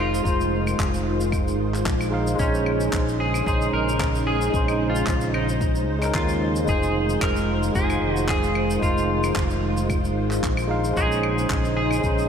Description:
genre	sunset chillout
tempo	112 BPM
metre	4/4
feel	swing 54% on 16ths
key	Bb minor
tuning	A4 = 440 Hz
part	semi-hollow electric guitar	melody	0.0-12.3 s	Db4 to Bb4	-28 LUFS	equal	lush chorus, tape echo
part	barky tine electric piano	accompaniment	0.0-12.3 s	Ab3 to F5	-27 LUFS	right 1 dB	overdrive, auto-pan, diffuse ambient delay
part	soft string machine	sustained chords	0.0-12.3 s	Db3 to C5	-26 LUFS	equal	ensemble chorus
part	mellow fretless electric bass	bass	0.0-12.3 s	F1 to Eb2	-26 LUFS	equal	none
part	shaker, claves and handclaps	drums	0.1-12.3 s	none	-32 LUFS	equal	none
part	electronic kick drum	drums	0.3-12.2 s	none	-26 LUFS	equal	none
room	wet lush hall reverb, RT60 1.9 s, small room reverb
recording	dreamy mix soaked in reverb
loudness	-20 LUFS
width	side -7 dB against mid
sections	0.0-12.3 A section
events	none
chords	0.0 Fm7; 2.4 Bbm11; 6.7 Fm7; 11.0 Bbm11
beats	| 0.25 0.79 1.32 1.86 | 2.39 2.93 3.46 4.00 | 4.54 5.07 5.61 6.14 | 6.68 7.21 7.75 8.29 | 8.82 9.36 9.89 10.43 | 10.96 11.50 12.04

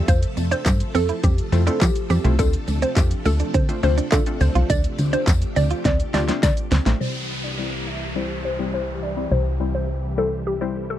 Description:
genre	dance-pop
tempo	104 BPM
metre	4/4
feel	straight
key	unclear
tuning	A4 = 440 Hz
part	wavetable chord stab	accompaniment	0.0-11.0 s	G3 to D5	-29 LUFS	left 4 dB	sidechain pumping, low-pass filter
part	string machine, violins	sustained chords	0.0-11.0 s	C3 to E5	-31 LUFS	left 1 dB	ensemble chorus, sidechain pumping, low-pass filter
part	direct-recorded clean electric guitar	riff	0.0-7.0 s	A3 to F4	-27 LUFS	right 10 dB	analog chorus
part	plucky analog bass	bass	0.0-11.0 s	Bb1 to F3	-22 LUFS	equal	sidechain pumping
part	hollow square pluck	melody	0.1-11.0 s	G4 to E5	-26 LUFS	equal	chorus, low-pass filter, tape echo
part	pop drum kit	drums	0.1-7.0 s	handclaps, hi-hat, kick drum, shaker, snare drum	-21 LUFS	equal	none
part	tambourine	percussion	0.1-6.9 s	none	-40 LUFS	left 26 dB	none
part	downlifter	sound effects	7.0-11.0 s	none	-32 LUFS	equal	none
room	little or no reverb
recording	dry, close 1970s-style studio recording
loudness	-19 LUFS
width	side -12 dB against mid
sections	0.0-7.0 A section; 7.0-11.0 B section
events	drop 0.0-7.0; drum fill 5.9-7.0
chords	0.0 Fmaj7; 2.4 Dm7; 7.0 C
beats	| 0.08 0.66 1.24 1.81 | 2.39 2.97 3.54 4.12 | 4.70 5.28 5.85 6.43 | 7.01 7.58 8.16 8.74 | 9.31 9.89 10.47

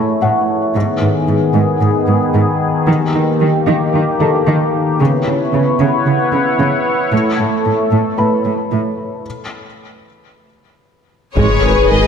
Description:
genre	cinematic, hybrid orchestral and electronic film score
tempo	113 BPM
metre	4/4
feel	straight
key	G# phrygian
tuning	A4 = 440 Hz
part	sweeping resonant pad	sustained chords	0.0-12.1 s	D#3 to C#5	-16 LUFS	left 2 dB	chorus, low-pass filter
part	warm symphonic cello section	bass	0.0-12.0 s	G#2 to D#3	-16 LUFS	right 2 dB	none
part	felt-muted upright piano	texture	0.0-9.3 s	G#4 to B5	-24 LUFS	left 3 dB	digital delay
part	rich studio violin section	melody	11.4-12.1 s	C#5 to D#5	-18 LUFS	left 3 dB	low-pass filter
part	warm symphonic violin section	second line	11.4-12.1 s	G#4 to B4	-19 LUFS	left 2 dB	none
part	rich symphonic viola section	accompaniment	11.4-12.1 s	D#3 to G#4	-18 LUFS	right 3 dB	low-pass filter
part	dark French horn section	sustained chords	11.4-12.1 s	G#4 to B4	-16 LUFS	left 9 dB	low-pass filter
part	dark tuba	bass	11.4-12.0 s	G#1	-21 LUFS	right 3 dB	none
part	rich symphonic double bass section	bass	11.4-12.0 s	G#1	-22 LUFS	right 3 dB	none
part	sub bass with octave	bass	11.4-12.1 s	G#1	-18 LUFS	left 1 dB	none
part	taiko ensemble	drums	11.4-12.1 s	none	-23 LUFS	left 2 dB	none
part	impact	sound effects	11.4-12.1 s	none	-22 LUFS	left 1 dB	none
room	wet scoring stage reverb, RT60 1.7 s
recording	none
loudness	-12 LUFS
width	side -7 dB against mid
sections	0.0-11.4 A section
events	build-up 0.0-11.4; filter sweep 0.0-11.4; break 9.2-11.4; impact 11.4-12.1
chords	0.0 A; 0.7 G#m; 2.9 D#; 5.0 C#m7; 7.1 A; 9.2 N.C.; 11.4 G#m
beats	0.22 | 0.75 1.28 1.81 2.34 | 2.87 3.40 3.94 4.47 | 5.00 5.53 6.06 6.59 | 7.12 7.65 8.18 8.71 | 9.24 9.78 10.31 10.84 | 11.37 11.90

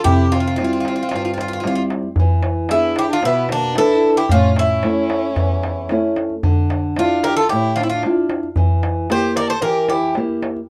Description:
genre	greek folk, Greek bouzouki band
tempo	113 BPM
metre	4/4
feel	straight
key	unclear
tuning	A4 = 442 Hz
part	Greek bouzouki	melody	0.0-10.1 s	D4 to D5	-21 LUFS	equal	none
part	rich violin	second line	0.0-10.1 s	Bb3 to Bb4	-27 LUFS	equal	none
part	nylon-string guitar	accompaniment	0.1-10.6 s	E2 to B4	-23 LUFS	equal	none
part	darbuka	percussion	0.1-10.6 s	none	-22 LUFS	equal	none
room	light reverb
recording	dry, close 1970s-style studio recording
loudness	-18 LUFS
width	mono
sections	0.0-10.7 A section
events	none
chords	0.1 C; 2.2 E7; 4.3 A; 6.4 Dmadd9; 8.6 Edim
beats	| 0.05 0.58 1.11 1.64 | 2.17 2.71 3.24 3.77 | 4.30 4.83 5.36 5.90 | 6.43 6.96 7.49 8.03 | 8.56 9.09 9.62 10.15

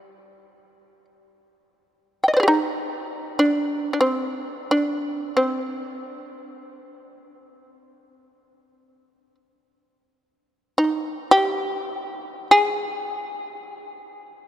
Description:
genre	japanese traditional, Japanese chamber music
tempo	free time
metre	none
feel	none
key	C hirajoshi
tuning	A4 = 440 Hz
part	shamisen	solo	0.0-14.5 s	G3 to G5	-20 LUFS	equal	none
room	moderate cathedral reverb, RT60 5.5 s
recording	none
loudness	-20 LUFS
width	side -12 dB against mid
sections	0.0-14.5 A section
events	none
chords	none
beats	free time

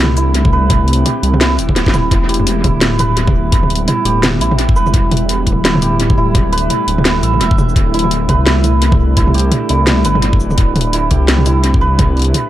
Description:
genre	half-time drum and bass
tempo	170 BPM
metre	4/4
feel	swing 59% on 16ths, half-time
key	unclear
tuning	A4 = 443 Hz
part	deep dark ambient pad	sustained chords	0.0-12.5 s	G3 to E4	-21 LUFS	equal	chorus, built-in reverb, sidechain pumping
part	santur	arpeggios	0.0-12.5 s	E4 to E5	-18 LUFS	right 4 dB	tape echo
part	dark detuned saw bass	bass	0.0-12.3 s	D1 to C2	-15 LUFS	equal	none
part	drum and bass drum kit	drums	0.0-12.4 s	hi-hat, shaker, snare drum, toms	-16 LUFS	equal	dub echo
part	electronic kick drum	drums	0.5-12.1 s	none	-14 LUFS	equal	none
room	light reverb, digital ambience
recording	echo-heavy mix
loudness	-10 LUFS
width	side -13 dB against mid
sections	0.0-12.5 A section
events	drum fill 1.8-2.1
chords	0.0 Dsus2; 2.1 Em; 7.8 Dsus2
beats	0.35 | 0.70 1.05 1.41 1.76 | 2.11 2.46 2.82 3.17 | 3.52 3.88 4.23 4.58 | 4.93 5.29 5.64 5.99 | 6.35 6.70 7.05 7.41 | 7.76 8.11 8.46 8.82 | 9.17 9.52 9.88 10.23 | 10.58 10.94 11.29 11.64 | 11.99 12.35

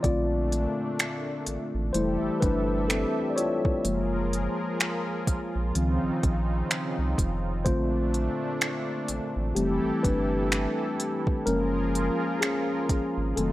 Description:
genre	contemporary R&B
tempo	63 BPM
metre	4/4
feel	swing 58% on 16ths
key	Bb lydian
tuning	A4 = 438 Hz
part	mellow tine electric piano	accompaniment	0.0-13.5 s	D3 to D5	-28 LUFS	left 2 dB	none
part	warm analog pad	sustained chords	0.0-13.5 s	Bb2 to E5	-33 LUFS	right 1 dB	chorus, tremolo
part	sub bass with octave	bass	0.0-13.5 s	F1 to Db2	-29 LUFS	equal	none
part	smooth R&B drum kit	drums	0.0-13.5 s	finger snaps, hi-hat, kick drum	-28 LUFS	equal	overdrive
room	light reverb, digital ambience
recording	dry, gritty hardware recording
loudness	-24 LUFS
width	side -16 dB against mid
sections	0.0-13.5 A section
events	tine electric piano solo 0.0-13.5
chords	0.0 Bbmaj9; 1.9 Fmaj9; 3.8 Gbmaj9; 5.8 Dbmaj9; 7.7 Bbmaj9; 9.6 Fmaj9; 11.5 Gbmaj9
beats	| 0.04 0.99 1.94 2.90 | 3.85 4.80 5.75 6.71 | 7.66 8.61 9.56 10.52 | 11.47 12.42 13.37

